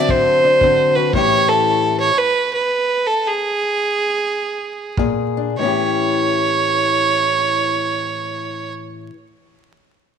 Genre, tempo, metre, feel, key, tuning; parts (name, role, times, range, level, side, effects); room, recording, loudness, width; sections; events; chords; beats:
acoustic country blues, solo or duo; 98-115 BPM; 4/4; swing 64% on 8ths; A mixolydian; A4 = 440 Hz
clear fiddle; melody; 0.0-8.7 s; G#4 to D5; -16 LUFS; right 3 dB
fingerpicked acoustic archtop guitar; accompaniment; 0.0-9.2 s; A2 to Ab4; -20 LUFS; left 7 dB
kick drum; drums; 0.1-1.3, 5.0-5.1 s; -23 LUFS; right 1 dB
moderate echo chamber reverb, RT60 2.0 s, small room ambience; 1960s-style stereo, vinyl crackle; -15 LUFS; side -7 dB against mid
0.0-5.6 A section; 5.6-10.2 B section
slowing down 1.1-5.6; stop 1.1-5.0
0.0 D7; 1.1 A7; 5.0 Bb7; 5.6 A7
0.09 0.61 | 1.14 1.66 2.19 2.72 | 3.27 3.82 4.39 4.97 | 5.57 6.18 6.79 7.40 | 8.02 8.63